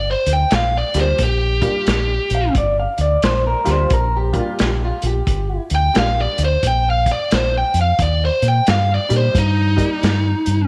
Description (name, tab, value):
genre	electric blues shuffle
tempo	88 BPM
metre	4/4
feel	swing 63% on 8ths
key	G minor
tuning	A4 = 442 Hz
part	biting lead guitar	melody	0.0-10.7 s	Eb4 to G5	-21 LUFS	equal	overdrive
part	deep dub fingered electric bass	bass	0.0-10.6 s	G1 to Bb2	-21 LUFS	equal	none
part	vintage drum kit	drums	0.3-10.6 s	hi-hat, kick drum, snare drum	-24 LUFS	equal	none
part	honky-tonk upright piano	accompaniment	0.9-10.0 s	G3 to D5	-28 LUFS	equal	none
part	electric guitar through a small old amp	second line	2.3-5.6 s	F4 to F5	-23 LUFS	equal	none
room	moderate echo chamber reverb, RT60 1.6 s, studio ambience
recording	none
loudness	-17 LUFS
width	mono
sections	0.0-10.7 A section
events	none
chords	0.0 Gm7; 8.0 Ebmaj7